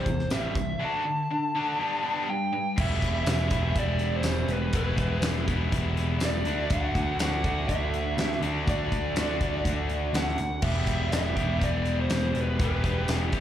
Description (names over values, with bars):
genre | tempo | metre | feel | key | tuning
classic rock | 122 BPM | 4/4 | straight | unclear | A4 = 443 Hz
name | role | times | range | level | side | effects
lead guitar through a small cranked amp | melody | 0.0-13.1 s | B4 to A5 | -31 LUFS | right 1 dB | overdrive, slapback echo, tape echo
cranked stack guitar | riff | 0.0-13.4 s | E2 to G4 | -30 LUFS | left 1 dB | overdrive, slapback echo
picked electric bass | bass | 0.1-13.4 s | E1 to E2 | -29 LUFS | equal | none
huge arena drum kit | drums | 0.1-13.4 s | crash cymbal, hi-hat, kick drum, snare drum, tambourine | -30 LUFS | equal | none
room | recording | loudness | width
light reverb | live gig heard through the venue's PA, club reverb | -24 LUFS | side -11 dB against mid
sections
0.0-2.8 A section; 2.8-13.4 B section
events
none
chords
0.0 C; 0.8 D; 1.8 G; 2.8 Em; 6.5 D; 10.6 Em